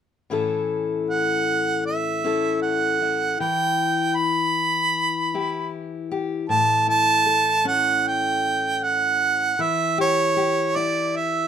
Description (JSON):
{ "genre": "acoustic folk duo or small band", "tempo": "78 BPM", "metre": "4/4", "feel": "straight", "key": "A mixolydian", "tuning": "A4 = 439 Hz", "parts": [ { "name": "fingerpicked steel-string acoustic guitar", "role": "accompaniment", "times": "0.3-11.5 s", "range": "A2 to A4", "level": "-26 LUFS", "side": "left 6 dB", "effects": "none" }, { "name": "warm harmonica", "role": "melody", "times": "1.1-11.5 s", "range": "C#5 to B5", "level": "-20 LUFS", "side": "right 3 dB", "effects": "none" } ], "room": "light reverb", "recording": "minimal, uncompressed stereo recording", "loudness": "-19 LUFS", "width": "side -8 dB against mid", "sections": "0.3-6.5 A section; 6.5-11.5 B section", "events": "none", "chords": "0.3 A; 3.4 Em; 6.5 A; 9.6 Em", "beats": "| 0.31 1.08 1.86 2.63 | 3.40 4.18 4.95 5.72 | 6.50 7.27 8.04 8.82 | 9.59 10.37 11.14" }